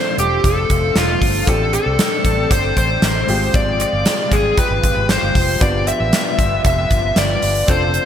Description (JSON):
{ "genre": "1980s-style pop", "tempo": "116 BPM", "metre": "4/4", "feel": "straight", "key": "unclear", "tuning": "A4 = 440 Hz", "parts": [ { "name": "dark smooth lead guitar", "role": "melody", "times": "0.0-8.1 s", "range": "F4 to E5", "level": "-18 LUFS", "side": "left 1 dB", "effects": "overdrive" }, { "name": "clear grand piano", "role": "accompaniment", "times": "0.0-8.1 s", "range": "Ab3 to A4", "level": "-27 LUFS", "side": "equal", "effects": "none" }, { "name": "lush unison pad", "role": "sustained chords", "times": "0.0-8.1 s", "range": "C3 to G4", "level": "-26 LUFS", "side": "left 1 dB", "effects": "chorus" }, { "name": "vintage muted fingered electric bass", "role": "bass", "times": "0.2-8.0 s", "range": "E1 to C2", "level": "-21 LUFS", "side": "equal", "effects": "none" }, { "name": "gated 80s drum kit", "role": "drums", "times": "0.2-8.1 s", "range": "hi-hat, kick drum, snare drum", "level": "-18 LUFS", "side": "equal", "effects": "gated reverb" } ], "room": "moderate lush hall reverb, RT60 1.8 s, studio reverb", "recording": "bright 1980s-style digital production", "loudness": "-14 LUFS", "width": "side -9 dB against mid", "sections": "0.0-8.1 A section", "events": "none", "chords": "0.0 Dm7; 1.5 Am7; 3.3 Fmadd9; 5.6 G7" }